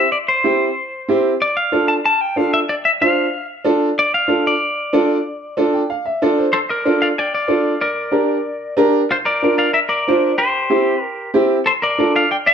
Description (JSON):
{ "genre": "latin", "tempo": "187 BPM", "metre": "4/4", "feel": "straight", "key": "D minor", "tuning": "A4 = 441 Hz", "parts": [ { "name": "clean electric guitar", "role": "melody", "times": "0.0-12.5 s", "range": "F4 to A5", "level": "-17 LUFS", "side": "left 2 dB", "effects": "spring reverb" }, { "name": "clear upright piano", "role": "accompaniment", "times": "0.0-12.2 s", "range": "C4 to G5", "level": "-16 LUFS", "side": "right 1 dB", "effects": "none" } ], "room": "wet studio ambience, RT60 0.5 s", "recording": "band playing live in one room", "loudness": "-15 LUFS", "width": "side -7 dB against mid", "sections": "0.0-6.5 A section; 6.5-12.5 B section", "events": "upright piano fill 5.6-6.5", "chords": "0.0 C; 1.4 Dm; 7.8 Gm; 9.1 Bb; 10.4 C; 11.7 Dm" }